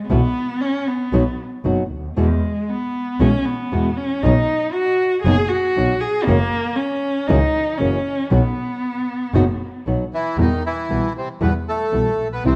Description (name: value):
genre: tango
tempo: 117 BPM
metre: 4/4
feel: rubato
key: unclear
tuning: A4 = 440 Hz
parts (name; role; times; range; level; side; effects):
- rich cello; second line; 0.0-9.8 s; G#3 to G#4; -23 LUFS; equal; none
- nylon-string guitar; accompaniment; 0.1-12.5 s; B2 to F#4; -24 LUFS; equal; none
- clear double bass; bass; 0.1-12.6 s; F#1 to E2; -23 LUFS; equal; none
- bandoneon; melody; 10.1-12.6 s; C3 to B4; -24 LUFS; equal; none
room: light reverb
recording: none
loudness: -20 LUFS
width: mono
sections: 0.0-10.4 A section; 10.4-12.6 B section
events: cello solo 0.0-10.4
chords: 0.1 Bsus4; 1.1 B; 2.2 Eadd9; 4.2 B; 6.3 F#7; 8.3 B; 10.4 Em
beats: | 0.10 0.62 1.14 1.65 | 2.17 2.69 3.21 3.72 | 4.24 4.75 5.26 5.77 | 6.27 6.78 7.29 7.80 | 8.31 8.82 9.34 9.86 | 10.37 10.89 11.40 11.92 | 12.43